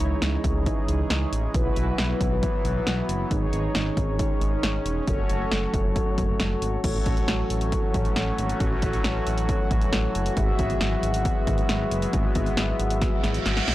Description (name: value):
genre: synth-pop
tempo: 136 BPM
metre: 4/4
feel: straight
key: unclear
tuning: A4 = 440 Hz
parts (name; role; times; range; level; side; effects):
- mellow synth brass; accompaniment; 0.0-13.7 s; D#4 to E5; -30 LUFS; equal; chorus
- sweeping resonant pad; sustained chords; 0.0-13.7 s; D#3 to D#5; -30 LUFS; equal; chorus
- smooth synth bass; bass; 0.0-13.7 s; E1 to C#2; -27 LUFS; equal; none
- house drum kit; drums; 0.0-13.7 s; crash cymbal, hi-hat, kick drum, snare drum; -26 LUFS; equal; none
- reverse cymbal; sound effects; 13.2-13.7 s; none; -29 LUFS; right 6 dB; none
room: light reverb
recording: blown-out, overdriven recording, overdrive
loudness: -22 LUFS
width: side -16 dB against mid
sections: 0.0-6.8 A section; 6.8-13.7 B section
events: drum fill 13.0-13.7; reverse cymbal 13.2-13.7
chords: 0.0 C#madd9; 1.5 Bsus4; 3.3 G#sus4; 5.1 F#m; 6.8 A6; 10.4 Eadd9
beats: 0.22 0.66 1.10 | 1.54 1.99 2.43 2.87 | 3.31 3.75 4.19 4.63 | 5.07 5.51 5.96 6.40 | 6.84 7.28 7.72 8.16 | 8.60 9.04 9.49 9.93 | 10.37 10.81 11.25 11.69 | 12.13 12.57 13.02 13.46